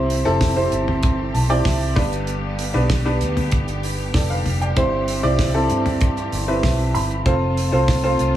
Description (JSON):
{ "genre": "piano-driven pop", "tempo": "96 BPM", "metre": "4/4", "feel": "straight", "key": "C major", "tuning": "A4 = 443 Hz", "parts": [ { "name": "warm upright piano", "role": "accompaniment", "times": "0.0-8.4 s", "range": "G2 to B5", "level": "-21 LUFS", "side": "equal", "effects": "none" }, { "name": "muted studio string section", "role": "sustained chords", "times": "0.0-8.4 s", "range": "D3 to G4", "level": "-29 LUFS", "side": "right 1 dB", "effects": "none" }, { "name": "vintage muted fingered electric bass", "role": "bass", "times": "0.0-8.4 s", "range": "F1 to G2", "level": "-22 LUFS", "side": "equal", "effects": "none" }, { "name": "damped 70s drum kit", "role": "drums", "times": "0.1-8.3 s", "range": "hi-hat, kick drum, snare drum, toms", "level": "-23 LUFS", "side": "equal", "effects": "none" } ], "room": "light reverb, studio reverb", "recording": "none", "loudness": "-17 LUFS", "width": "side -12 dB against mid", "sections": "0.0-8.4 A section", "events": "upright piano fill 1.0-2.3, 6.3-7.3", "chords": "0.0 C; 2.0 G; 4.8 C/G; 7.3 F", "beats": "0.41 1.03 1.65 | 2.28 2.90 3.52 4.14 | 4.77 5.39 6.01 6.63 | 7.26 7.88" }